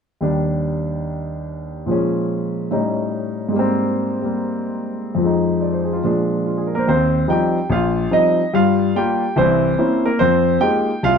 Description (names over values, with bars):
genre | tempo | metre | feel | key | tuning
solo jazz | 144 BPM | 4/4 | swing 66% on 8ths | Eb major | A4 = 440 Hz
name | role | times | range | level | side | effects
warm grand piano | solo | 0.2-11.2 s | Bb1 to G5 | -16 LUFS | equal | none
room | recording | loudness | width
wet studio reverb, RT60 0.8 s | dark, warm production | -16 LUFS | side -6 dB against mid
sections
0.2-6.9 A section; 6.9-11.2 B section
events
none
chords
0.2 Ebmaj7; 1.9 Bbm7; 2.7 A7#11; 3.5 Abmaj9; 5.2 Fm7; 6.0 Bb7; 6.9 Eb69; 8.5 Gm7; 9.4 C7b9; 10.2 Fm11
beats
| 0.20 0.62 1.04 1.45 | 1.87 2.29 2.70 3.12 | 3.53 3.95 4.37 4.78 | 5.20 5.61 6.03 6.45 | 6.86 7.28 7.69 8.11 | 8.53 8.94 9.36 9.77 | 10.19 10.61 11.02